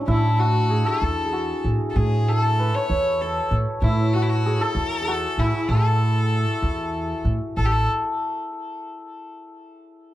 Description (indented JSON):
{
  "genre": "Persian modal ensemble",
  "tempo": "64 BPM (dotted quarters)",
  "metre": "6/8",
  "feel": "straight",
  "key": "A dastgah mahur",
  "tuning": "A4 = 439 Hz",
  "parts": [
    { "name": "santur", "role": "melody", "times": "0.0-8.9 s", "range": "D4 to C#5", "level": "-25 LUFS", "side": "left 1 dB", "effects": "tape echo" },
    { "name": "bright violin", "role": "second line", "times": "0.1-7.9 s", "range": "E4 to C#5", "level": "-28 LUFS", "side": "left 1 dB", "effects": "none" },
    { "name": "upright bass", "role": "bass", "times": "0.1-7.9 s", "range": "A1 to A2", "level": "-22 LUFS", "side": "right 1 dB", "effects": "none" }
  ],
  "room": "wet small room reverb, RT60 0.6 s",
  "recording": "heard from further back in the room",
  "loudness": "-19 LUFS",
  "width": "side -14 dB against mid",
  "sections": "0.0-7.6 A section; 7.6-9.4 B section",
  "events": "none",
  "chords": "none",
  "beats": "| 0.07 1.01 | 1.95 2.88 | 3.82 4.76 | 5.69 6.63 | 7.57 8.50"
}